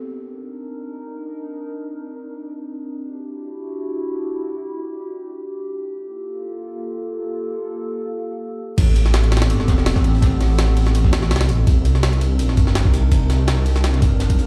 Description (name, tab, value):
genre	drum and bass, jungle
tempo	166 BPM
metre	4/4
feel	swing 54% on 16ths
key	unclear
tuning	A4 = 440 Hz
part	warbly tape-like pad	sustained chords	0.0-14.5 s	Bb3 to Bb4	-29 LUFS	equal	chorus, built-in reverb, vintage 12-bit sampler grit
part	detuned saw bass	bass	8.8-14.5 s	E1 to D2	-19 LUFS	equal	none
part	crunchy breakbeat drum kit	drums	8.8-14.5 s	hi-hat, snare drum	-37 LUFS	equal	high-pass filter on hats, high-pass filter on snare, high-pass filter on room
part	jungle sampler-style drum kit	drums	8.8-14.4 s	crash cymbal, kick drum, ride cymbal, snare drum	-21 LUFS	equal	none
room	little or no reverb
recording	played on a big sound system in a bare room, stone room reverb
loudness	-19 LUFS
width	mono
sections	0.0-8.8 A section; 8.8-14.5 B section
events	drop 8.8-14.5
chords	0.1 Cm9; 3.0 Em9; 5.9 Gm9; 8.8 Am9; 11.7 Cm9